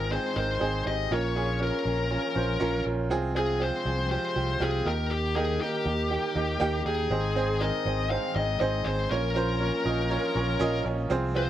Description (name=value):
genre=pop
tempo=120 BPM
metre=4/4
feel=straight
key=Ab major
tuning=A4 = 441 Hz
part: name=bluesy overdriven lead guitar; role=melody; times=0.0-11.5 s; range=G4 to F5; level=-30 LUFS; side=left 4 dB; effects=distortion
part: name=clear upright piano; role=accompaniment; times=0.0-11.5 s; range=Ab2 to Eb5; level=-29 LUFS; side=right 3 dB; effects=none
part: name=warm studio string section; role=sustained chords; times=0.0-11.5 s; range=Eb3 to G4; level=-38 LUFS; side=left 4 dB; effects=none
part: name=fingered electric bass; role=bass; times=0.0-11.5 s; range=Ab1 to Eb2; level=-30 LUFS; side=equal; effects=none
room=light reverb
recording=vinyl crackle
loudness=-25 LUFS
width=side -12 dB against mid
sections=0.0-7.1 A section; 7.1-11.5 B section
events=none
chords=0.0 Ab; 1.1 Bbm; 3.1 Fm/C; 4.9 Eb; 7.1 Ab; 9.1 Bbm